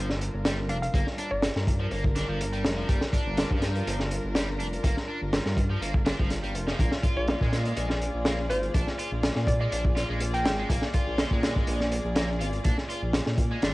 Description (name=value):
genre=breakbeat, breaks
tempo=123 BPM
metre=4/4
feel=swing 54% on 16ths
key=G phrygian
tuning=A4 = 436 Hz
part: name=warm studio string section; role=sustained chords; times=0.0-13.7 s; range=G3 to D5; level=-35 LUFS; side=equal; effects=sidechain pumping, cassette tape
part: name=distorted electric guitar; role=riff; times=0.0-13.7 s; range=F3 to F4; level=-36 LUFS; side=equal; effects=overdrive, tube saturation, cassette tape, tape echo
part: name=dark detuned saw bass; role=bass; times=0.0-13.7 s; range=F1 to Bb2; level=-30 LUFS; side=equal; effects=none
part: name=crunchy breakbeat drum kit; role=drums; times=0.1-13.7 s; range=hi-hat, kick drum, snare drum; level=-27 LUFS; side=equal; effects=cassette tape
part: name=hollow square pluck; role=melody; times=0.7-1.8, 7.2-10.5 s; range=C5 to G5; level=-34 LUFS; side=equal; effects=chorus, small speaker sound, cassette tape, tape echo
room=light reverb, small room ambience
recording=home recording on cassette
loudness=-24 LUFS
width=side -20 dB against mid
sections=0.0-13.7 A section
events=none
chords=0.0 Gm7; 6.8 Bb7